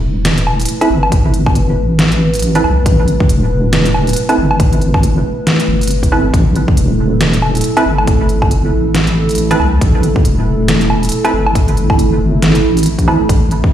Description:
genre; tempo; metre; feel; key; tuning
deep dubstep; 138 BPM; 4/4; swing 59% on 16ths, half-time; unclear; A4 = 436 Hz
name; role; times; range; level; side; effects
dark analog pad; sustained chords; 0.0-13.7 s; A3 to B4; -18 LUFS; right 1 dB; chorus, phaser
deep soft wobble bass; bass; 0.0-13.7 s; E1 to C2; -14 LUFS; equal; chorus, tube saturation
dubstep drum kit; drums; 0.2-13.6 s; hi-hat, snare drum, woodblock; -17 LUFS; equal; small room ambience
filtered dub chord stab; stabs; 0.8-13.2 s; C4 to B4; -19 LUFS; right 3 dB; analog chorus, dub echo
electronic kick drum; drums; 1.1-13.7 s; none; -14 LUFS; equal; small room ambience
room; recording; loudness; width
light reverb, digital ambience; played on a big sound system in a bare room, stone room reverb; -10 LUFS; side -11 dB against mid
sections
0.0-13.7 A section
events
none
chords
0.0 Asus2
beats
0.25 0.69 | 1.12 1.55 1.99 2.42 | 2.86 3.29 3.73 4.16 | 4.60 5.03 5.47 5.90 | 6.34 6.77 7.21 7.64 | 8.08 8.51 8.95 9.38 | 9.81 10.25 10.69 11.12 | 11.55 11.99 12.42 12.86 | 13.29 13.73

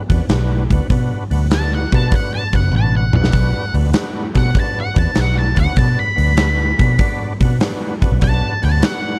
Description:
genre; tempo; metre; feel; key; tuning
blues rock power trio and southern rock; 98 BPM; 4/4; swing 68% on 8ths; B minor; A4 = 440 Hz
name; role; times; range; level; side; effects
overdriven tonewheel organ; sustained chords; 0.0-9.2 s; B3 to D5; -30 LUFS; equal; chorus vibrato, subtle chorus
vintage muted picked electric bass; bass; 0.1-8.8 s; F#1 to B2; -18 LUFS; equal; none
huge arena drum kit; drums; 0.1-9.0 s; hi-hat, kick drum, snare drum, toms; -20 LUFS; equal; none
octave-fuzz lead guitar; melody; 1.5-9.2 s; F#5 to B5; -24 LUFS; equal; wah, distortion
room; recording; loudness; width
little or no reverb; none; -16 LUFS; mono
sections
0.0-9.2 A section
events
lead electric guitar solo 0.0-9.2; drum fill 2.7-3.3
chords
0.0 Bm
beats
0.29 | 0.90 1.51 2.12 2.73 | 3.33 3.94 4.55 5.16 | 5.77 6.38 7.00 7.61 | 8.22 8.83

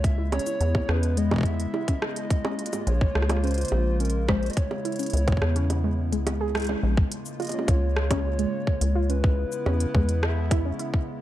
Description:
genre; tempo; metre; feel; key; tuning
IDM; 106 BPM; 4/4; straight; unclear; A4 = 440 Hz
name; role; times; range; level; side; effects
warbly nostalgic lead; melody; 0.0-10.8 s; Bb4 to Fb5; -33 LUFS; right 1 dB; chorus, cassette tape, tape echo
hollow soft pad; sustained chords; 0.0-11.2 s; Db3 to F4; -34 LUFS; left 1 dB; chorus
deep acid bass; bass; 0.0-10.7 s; Bb1 to Fb2; -24 LUFS; equal; none
electronic kick drum; drums; 0.0-11.1 s; none; -24 LUFS; equal; overdrive
organic electronic drum kit; drums; 0.0-10.9 s; bongos, hi-hat, rim click, shaker; -31 LUFS; right 1 dB; overdrive
warbly dusty pluck; arpeggios; 0.2-10.9 s; Ab3 to Ab4; -32 LUFS; equal; chorus, tape echo
room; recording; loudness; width
little or no reverb; dark, warm production; -22 LUFS; side -14 dB against mid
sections
0.0-6.8 A section; 6.8-11.2 B section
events
kick drops out 5.7-6.8; band accent 6.5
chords
0.0 Dbm7; 2.3 Bbm7; 4.6 Dbm7; 6.8 Bbm7; 9.1 Dbm7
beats
| 0.04 0.61 1.17 1.74 | 2.30 2.87 3.44 4.00 | 4.57 5.13 5.70 6.27 | 6.83 7.40 7.96 8.53 | 9.10 9.66 10.23 10.79

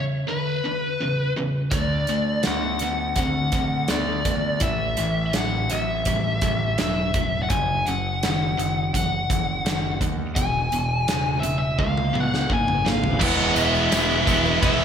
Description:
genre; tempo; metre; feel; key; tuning
classic rock; 84 BPM; 4/4; straight; unclear; A4 = 438 Hz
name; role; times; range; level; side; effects
distorted electric guitar; riff; 0.0-14.8 s; E2 to E4; -25 LUFS; equal; overdrive
biting lead guitar; melody; 0.3-14.8 s; B4 to G#5; -25 LUFS; left 2 dB; overdrive, slapback echo
growling picked electric bass; bass; 1.7-14.8 s; E1 to D#2; -28 LUFS; equal; overdrive
big rock drum kit; drums; 1.7-14.8 s; crash cymbal, hi-hat, kick drum, ride cymbal, snare drum, toms; -26 LUFS; right 1 dB; none
tonewheel organ; sustained chords; 12.9-14.8 s; A3 to D5; -34 LUFS; right 1 dB; none
picked swing-style acoustic guitar; accompaniment; 13.2-14.8 s; E2 to E4; -32 LUFS; right 5 dB; none
crunchy overdriven guitar; riff; 13.2-14.8 s; E3 to E4; -26 LUFS; right 1 dB; slapback echo
tambourine; percussion; 13.2-14.5 s; none; -39 LUFS; left 10 dB; none
room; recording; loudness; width
moderate lush hall reverb, RT60 1.8 s, studio ambience; big arena sound; -20 LUFS; side -8 dB against mid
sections
0.0-13.2 A section; 13.2-14.8 B section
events
drum fill 11.8-13.2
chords
0.0 E5; 1.7 D; 4.6 A5; 7.5 F#5; 10.4 E; 11.8 C#; 13.2 E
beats
0.27 0.99 | 1.72 2.45 3.17 3.90 | 4.62 5.35 6.07 6.79 | 7.51 8.23 8.94 9.66 | 10.37 11.09 11.80 12.51 | 13.21 13.92 14.63

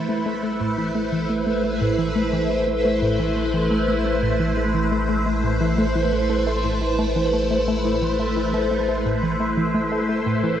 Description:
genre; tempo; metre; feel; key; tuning
ambient, sequencer-driven space music; 87 BPM; 4/4; straight; A minor; A4 = 438 Hz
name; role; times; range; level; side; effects
phased string machine; sustained chords; 0.0-10.6 s; A3 to C5; -22 LUFS; equal; ensemble chorus, phaser
tight sequenced synth; riff; 0.0-10.6 s; A2 to A3; -24 LUFS; equal; chorus, ping-pong delay
round analog bass; bass; 0.0-10.6 s; A1; -28 LUFS; equal; none
room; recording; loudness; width
wet concert hall reverb, RT60 2.0 s; worn, warbling old tape, cassette tape, warbly pitch drift; -19 LUFS; side -10 dB against mid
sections
0.0-10.6 A section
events
filter sweep on synth arpeggio sound 0.0-10.6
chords
0.0 Amadd9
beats
0.26 0.95 1.64 | 2.33 3.02 3.71 4.40 | 5.09 5.78 6.47 7.16 | 7.85 8.54 9.23 9.92

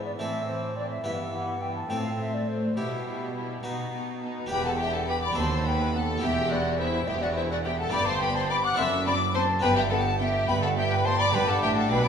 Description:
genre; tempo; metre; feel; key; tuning
classical, baroque-style concerto movement with solo episodes; 70 BPM (dotted quarters); 6/8; straight; E minor; A4 = 439 Hz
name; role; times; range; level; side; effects
mellow hollow silver concert flute; melody; 0.0-12.1 s; B4 to D6; -30 LUFS; left 1 dB; none
rich chamber violin section; melody; 0.0-12.1 s; D4 to F#6; -33 LUFS; left 5 dB; none
warm chamber violin section; second line; 0.0-12.1 s; B3 to F#5; -31 LUFS; left 2 dB; none
dark chamber viola section; accompaniment; 0.0-12.1 s; E3 to G4; -34 LUFS; equal; none
harpsichord; accompaniment; 0.0-12.1 s; D#2 to B4; -35 LUFS; left 1 dB; none
warm chamber cello section; bass; 0.0-12.1 s; D#2 to B2; -32 LUFS; right 3 dB; none
rich chamber double bass section; bass; 4.5-12.1 s; E1 to D#2; -32 LUFS; right 4 dB; none
room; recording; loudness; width
wet recital hall reverb, RT60 1.5 s; recorded in a church or concert hall; -24 LUFS; side -7 dB against mid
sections
0.0-4.5 A section; 4.5-12.1 B section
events
none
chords
0.2 Am; 1.0 Em/G; 1.9 F/A; 2.8 Em/B; 3.6 B; 4.5 Em; 5.4 B7/D#; 6.2 Em; 7.9 G; 8.8 D7/F#; 9.6 G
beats
0.19 | 1.04 1.90 | 2.77 3.64 | 4.51 5.37 | 6.23 7.08 | 7.94 8.79 | 9.64 10.49 | 11.34

